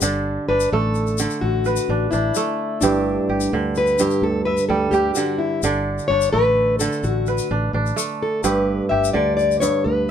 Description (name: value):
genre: west african traditional, West African string and xylophone music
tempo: 85 BPM (dotted quarters)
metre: 12/8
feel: straight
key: G major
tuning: A4 = 439 Hz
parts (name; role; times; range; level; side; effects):
- kora; arpeggios; 0.0-10.1 s; G2 to E5; -22 LUFS; right 4 dB; none
- fingered electric bass; bass; 0.0-10.1 s; G1 to D2; -24 LUFS; equal; none
- egg shaker; percussion; 0.0-9.7 s; none; -28 LUFS; left 8 dB; none
- fingerpicked plugged-in steel-string acoustic guitar; melody; 0.5-10.1 s; D4 to E5; -21 LUFS; left 3 dB; none
room: light reverb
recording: band playing live in one room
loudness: -18 LUFS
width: side -9 dB against mid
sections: 0.0-10.1 A section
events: steel-string acoustic guitar solo 0.0-10.1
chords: 0.0 D/G; 2.8 G5; 5.6 D5/G; 8.4 G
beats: | 0.02 0.72 1.42 2.12 | 2.82 3.52 4.22 4.93 | 5.63 6.33 7.04 7.74 | 8.45 9.15 9.86